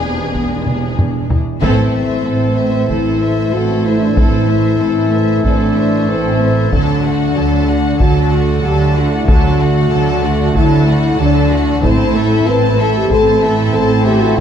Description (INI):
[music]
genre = cinematic, epic orchestral film score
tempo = 94 BPM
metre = 4/4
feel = straight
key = A dorian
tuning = A4 = 435 Hz
[part]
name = rich symphonic violin section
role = melody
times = 0.0-14.4 s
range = G#4 to A5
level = -25 LUFS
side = left 4 dB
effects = none
[part]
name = warm symphonic violin section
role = second line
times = 0.0-14.4 s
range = D4 to C5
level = -24 LUFS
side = left 2 dB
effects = none
[part]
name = rich studio viola section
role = accompaniment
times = 0.0-14.4 s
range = F#3 to C4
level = -24 LUFS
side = right 3 dB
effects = none
[part]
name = dark French horn section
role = sustained chords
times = 0.0-14.4 s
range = B#2 to B4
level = -17 LUFS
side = left 4 dB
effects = none
[part]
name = dark symphonic cello section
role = bass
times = 0.0-14.4 s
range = E2 to D3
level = -19 LUFS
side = right 4 dB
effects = none
[part]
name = warm symphonic double bass section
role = bass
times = 0.0-14.3 s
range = E1 to D2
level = -18 LUFS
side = right 3 dB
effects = none
[part]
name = taiko ensemble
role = drums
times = 0.3-13.7 s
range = none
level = -17 LUFS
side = equal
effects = none
[part]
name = mellow woodwind section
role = sustained chords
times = 1.6-14.4 s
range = A3 to F#5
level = -24 LUFS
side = equal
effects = none
[part]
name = warm trombone section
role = sustained chords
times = 1.6-14.4 s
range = D3 to C4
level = -22 LUFS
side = right 3 dB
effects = none
[sound]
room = wet concert hall reverb, RT60 1.9 s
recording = dark, warm production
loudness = -11 LUFS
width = side -8 dB against mid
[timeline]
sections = 0.0-1.6 A section; 1.6-14.4 B section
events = drum fill 0.7-1.6; band accent 1.6-2.3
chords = 0.0 E7; 1.6 Am; 6.7 D; 11.8 Am